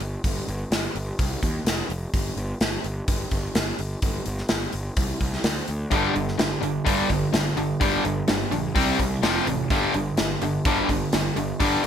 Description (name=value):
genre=hard rock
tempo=127 BPM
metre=4/4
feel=straight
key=unclear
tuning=A4 = 440 Hz
part: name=fuzz picked electric bass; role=bass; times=0.0-11.9 s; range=F1 to Eb2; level=-29 LUFS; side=equal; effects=overdrive
part: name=gated 80s drum kit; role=drums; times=0.0-11.9 s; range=hi-hat, kick drum, snare drum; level=-25 LUFS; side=equal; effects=none
part: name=distorted electric guitar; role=riff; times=5.9-11.9 s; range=F2 to C4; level=-25 LUFS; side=left 10 dB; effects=overdrive
part: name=overdriven electric guitar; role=riff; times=5.9-11.9 s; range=F2 to C4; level=-26 LUFS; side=right 10 dB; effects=none
room=light reverb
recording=none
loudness=-22 LUFS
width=side -9 dB against mid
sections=0.0-11.9 A section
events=none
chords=0.0 N.C.; 1.2 Cm; 1.7 N.C.; 5.9 G5; 8.8 C5; 9.2 F5; 9.7 G5